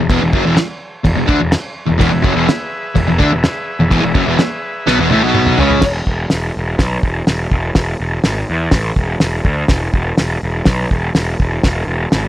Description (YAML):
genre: garage rock duo or trio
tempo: 125 BPM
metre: 4/4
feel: straight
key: E mixolydian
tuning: A4 = 440 Hz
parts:
  - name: fuzz guitar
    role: riff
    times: 0.0-5.8 s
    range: E2 to D4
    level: -14 LUFS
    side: left 1 dB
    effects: distortion
  - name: fuzz picked electric bass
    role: bass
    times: 0.0-12.3 s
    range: E1 to E2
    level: -17 LUFS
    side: equal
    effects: overdrive
  - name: cloth-damped thuddy drum kit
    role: drums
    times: 0.1-12.2 s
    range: crash cymbal, hi-hat, kick drum, snare drum, toms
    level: -16 LUFS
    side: equal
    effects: none
  - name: combo organ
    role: sustained chords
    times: 2.0-5.8 s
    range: G#4 to E5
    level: -23 LUFS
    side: left 1 dB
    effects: none
room: little or no reverb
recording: none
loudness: -13 LUFS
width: side -13 dB against mid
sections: 0.0-5.8 A section; 5.8-12.3 B section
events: drum fill 4.9-5.8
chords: 0.0 E; 5.8 N.C.